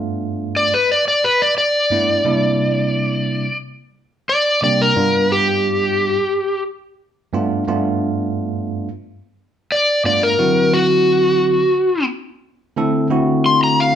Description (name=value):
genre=blues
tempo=88 BPM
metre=4/4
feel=straight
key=unclear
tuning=A4 = 440 Hz
part: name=bell-like tine electric piano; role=accompaniment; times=0.0-14.0 s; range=G2 to A4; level=-19 LUFS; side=right 1 dB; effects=fast stereo tremolo
part: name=overdriven slide guitar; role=melody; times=0.6-14.0 s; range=F#4 to C6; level=-15 LUFS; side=left 1 dB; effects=none
room=moderate large studio reverb, RT60 0.8 s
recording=band playing live in one room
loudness=-15 LUFS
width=side -9 dB against mid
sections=0.0-14.0 A section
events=electric slide guitar solo 0.0-14.0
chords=0.0 G7; 2.2 C7; 5.0 G7; 10.4 D7